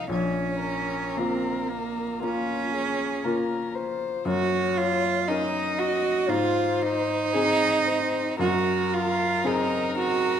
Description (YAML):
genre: classical, slow romantic movement for piano trio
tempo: 58 BPM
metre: 4/4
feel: rubato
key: unclear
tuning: A4 = 440 Hz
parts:
  - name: dark violin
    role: melody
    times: 0.0-10.4 s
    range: F4 to Eb5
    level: -30 LUFS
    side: left 6 dB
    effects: none
  - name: warm cello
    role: second line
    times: 0.0-10.4 s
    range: Bb3 to Gb4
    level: -25 LUFS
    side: right 5 dB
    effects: none
  - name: warm baby grand piano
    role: accompaniment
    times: 0.0-10.4 s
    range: Bb1 to Bb4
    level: -28 LUFS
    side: left 3 dB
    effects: none
room: moderate recital hall reverb, RT60 1.3 s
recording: close, detailed microphones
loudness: -23 LUFS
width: side -8 dB against mid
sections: 0.0-10.4 A section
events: none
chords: 0.1 Bbm; 4.3 Ebm7/Gb; 6.3 Ab; 8.4 Ab7/Gb